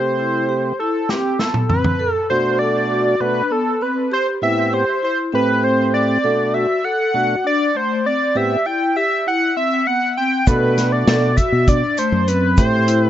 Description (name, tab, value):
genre	progressive instrumental, band music in an uneven meter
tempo	198 BPM (eighths)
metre	7/8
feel	straight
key	unclear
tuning	A4 = 440 Hz
part	lead with added fifth	melody	0.0-13.1 s	G4 to G5	-18 LUFS	equal	chorus, ping-pong delay
part	tonewheel organ	accompaniment	0.0-13.1 s	A2 to G4	-21 LUFS	right 2 dB	stopped rotary speaker
part	vibraphone with medium hard mallets	arpeggios	0.0-13.1 s	A3 to A4	-22 LUFS	left 2 dB	none
part	vintage drum kit	drums	1.1-2.0, 10.5-13.0 s	hi-hat, kick drum, snare drum, toms	-19 LUFS	equal	none
part	fingered electric bass	bass	10.5-13.1 s	F#2 to B2	-18 LUFS	equal	none
part	egg shaker	percussion	10.5-13.0 s	none	-37 LUFS	right 6 dB	none
room	light reverb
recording	nothing above 7.6 kHz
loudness	-15 LUFS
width	side -11 dB against mid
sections	0.0-2.0 A section; 2.0-13.1 B section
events	break 0.0-2.0; drum fill 1.1-2.0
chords	0.0 Am7/C; 2.0 Bm7; 4.1 Am7; 6.2 Bm7; 8.4 Am7; 10.5 Bm7; 12.6 Am7